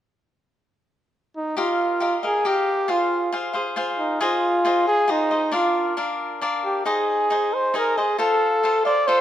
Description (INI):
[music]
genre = mexican folk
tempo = 136 BPM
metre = 3/4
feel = straight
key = Eb major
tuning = A4 = 439 Hz
[part]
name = mellow trumpet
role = melody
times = 1.4-9.2 s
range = Eb4 to D5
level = -20 LUFS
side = equal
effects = none
[part]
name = cavaquinho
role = accompaniment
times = 1.6-9.2 s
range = D4 to F5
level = -24 LUFS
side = left 2 dB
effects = none
[sound]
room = moderate recital hall reverb, RT60 1.8 s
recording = minimal, uncompressed stereo recording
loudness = -19 LUFS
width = side -11 dB against mid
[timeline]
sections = 0.2-1.6 A section; 1.6-9.2 B section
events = none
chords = 0.2 N.C.; 1.6 Ebadd9; 2.9 Fm; 4.2 Ab6; 5.5 Bb; 6.9 Ab; 8.2 F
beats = | 0.23 0.68 1.12 | 1.56 2.01 2.45 | 2.89 3.33 3.77 | 4.21 4.65 5.09 | 5.53 5.97 6.42 | 6.86 7.31 7.75 | 8.19 8.63 9.07